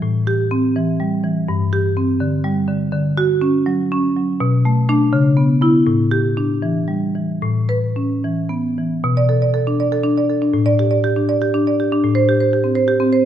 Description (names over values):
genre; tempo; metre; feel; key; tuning
classical, contemporary piece for solo marimba; 73-84 BPM (dotted quarters); 6/8; rubato; unclear; A4 = 440 Hz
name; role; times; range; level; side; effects
marimba with medium hard mallets; solo; 0.0-13.3 s; G2 to D5; -15 LUFS; equal; none
room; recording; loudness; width
moderate recital hall reverb, RT60 1.4 s; none; -15 LUFS; side -10 dB against mid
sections
0.0-9.0 A section; 9.0-13.3 A section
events
none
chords
0.0 Am7; 1.5 Gsus4; 2.9 Dmaj7; 4.4 Bm7; 5.1 C#m7; 5.9 A7sus4; 7.4 Aadd9; 9.0 Bm7; 10.5 A7sus4; 12.0 Am7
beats
| 0.03 0.76 | 1.48 2.21 | 2.93 3.66 | 4.40 5.12 | 5.86 6.62 | 7.41 8.22 | 9.03 9.79 | 10.54 11.29 | 12.03 12.75